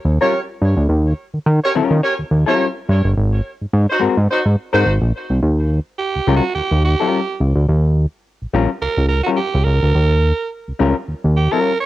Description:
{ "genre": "funk", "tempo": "106 BPM", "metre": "4/4", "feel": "swing 56% on 16ths", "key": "Eb mixolydian", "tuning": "A4 = 435 Hz", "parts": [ { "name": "fat analog bass", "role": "bass", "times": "0.0-11.5 s", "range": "G1 to Eb3", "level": "-14 LUFS", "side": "equal", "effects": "tube saturation" }, { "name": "clear horn section", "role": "second line", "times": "0.2-4.9 s", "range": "Eb4 to Db5", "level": "-20 LUFS", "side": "right 1 dB", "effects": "cassette tape, plate reverb, tape echo" }, { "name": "hollow-body jazz guitar", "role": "accompaniment", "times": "0.2-11.7 s", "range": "G3 to Bb4", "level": "-19 LUFS", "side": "left 6 dB", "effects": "cassette tape, plate reverb" }, { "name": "raspy alto saxophone", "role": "melody", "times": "6.0-11.9 s", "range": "Gb4 to Db5", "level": "-20 LUFS", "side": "right 5 dB", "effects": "cassette tape, plate reverb" } ], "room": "light reverb", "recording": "home recording on cassette", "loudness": "-15 LUFS", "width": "side -15 dB against mid", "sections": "0.0-5.4 A section; 5.4-11.9 B section", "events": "alto saxophone solo 5.4-11.9", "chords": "0.0 Eb9; 3.2 Abadd9; 5.4 Eb9" }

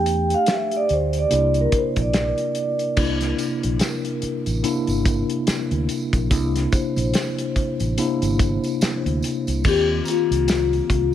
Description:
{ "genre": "lush 1970s-style soul", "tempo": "72 BPM", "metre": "4/4", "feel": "swing 58% on 16ths", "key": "unclear", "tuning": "A4 = 445 Hz", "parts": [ { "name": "vibraphone with soft mallets", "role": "melody", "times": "0.0-3.0, 9.7-11.1 s", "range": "F4 to G5", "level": "-21 LUFS", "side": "left 2 dB", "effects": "none" }, { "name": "mellow tine electric piano", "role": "accompaniment", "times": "0.0-11.1 s", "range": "C3 to G4", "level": "-24 LUFS", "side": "left 1 dB", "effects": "medium stereo tremolo" }, { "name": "fingered electric bass", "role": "bass", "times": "0.0-11.1 s", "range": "G1 to E2", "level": "-24 LUFS", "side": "equal", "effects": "none" }, { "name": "vibraphone with soft mallets", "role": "texture", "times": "0.0-11.1 s", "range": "Bb3 to C5", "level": "-32 LUFS", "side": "right 2 dB", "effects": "none" }, { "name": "warm soul drum kit", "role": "drums", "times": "0.1-11.1 s", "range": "crash cymbal, hi-hat, kick drum, snare drum", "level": "-24 LUFS", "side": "equal", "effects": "none" }, { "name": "tambourine", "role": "percussion", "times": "3.0-10.7 s", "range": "none", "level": "-38 LUFS", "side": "right 4 dB", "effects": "none" } ], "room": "light reverb, small room ambience", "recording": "none", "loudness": "-19 LUFS", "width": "side -10 dB against mid", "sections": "0.0-3.0 A section; 3.0-9.6 B section; 9.6-11.1 C section", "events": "vibraphone solo 0.0-3.0", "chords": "0.0 A7sus4/E; 1.3 C9; 9.6 Eb69" }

